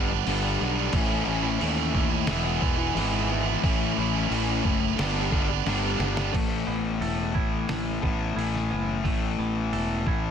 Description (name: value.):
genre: quiet-loud alternative rock.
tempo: 89 BPM.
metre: 4/4.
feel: straight.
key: A major.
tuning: A4 = 441 Hz.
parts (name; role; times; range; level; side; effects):
fuzz guitar; riff; 0.0-10.3 s; G2 to E4; -28 LUFS; left 10 dB; distortion.
overdriven electric guitar; riff; 0.0-6.3 s; G2 to E4; -28 LUFS; right 18 dB; none.
fuzz fingered electric bass; bass; 0.0-10.3 s; E1 to D#2; -29 LUFS; right 1 dB; overdrive.
lo-fi sampler-style drum kit; drums; 0.3-10.2 s; crash cymbal, hi-hat, kick drum, snare drum; -30 LUFS; right 1 dB; none.
twangy electric guitar; arpeggios; 6.3-10.3 s; A3 to A4; -34 LUFS; right 13 dB; none.
room: little or no reverb.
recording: dense, heavily limited modern master.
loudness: -23 LUFS.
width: side -8 dB against mid.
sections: 0.0-6.4 A section; 6.4-10.3 B section.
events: drum fill 5.7-6.4.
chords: 0.0 G; 0.9 A; 2.3 E; 3.6 A; 5.0 G; 6.4 Asus2.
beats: 0.27 | 0.94 1.62 2.29 2.97 | 3.65 4.32 5.00 5.67 | 6.35 7.03 7.71 8.38 | 9.06 9.74.